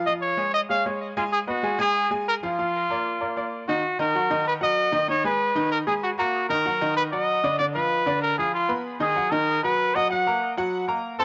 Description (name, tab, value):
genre	latin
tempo	191 BPM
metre	4/4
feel	straight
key	Eb minor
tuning	A4 = 435 Hz
part	bright upright piano	accompaniment	0.0-11.2 s	D3 to C6	-30 LUFS	equal	none
part	clear trumpet	melody	0.1-11.2 s	F4 to Gb5	-25 LUFS	equal	analog delay
room	light reverb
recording	dry, gritty hardware recording, nothing above 7.8 kHz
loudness	-24 LUFS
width	mono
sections	0.0-3.8 A section; 3.8-11.2 B section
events	none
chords	0.1 Db; 1.3 Abm; 2.6 Bb; 3.8 Ebm; 5.1 Abm; 6.3 Ebm; 7.6 Dm6; 8.8 B; 10.1 Gb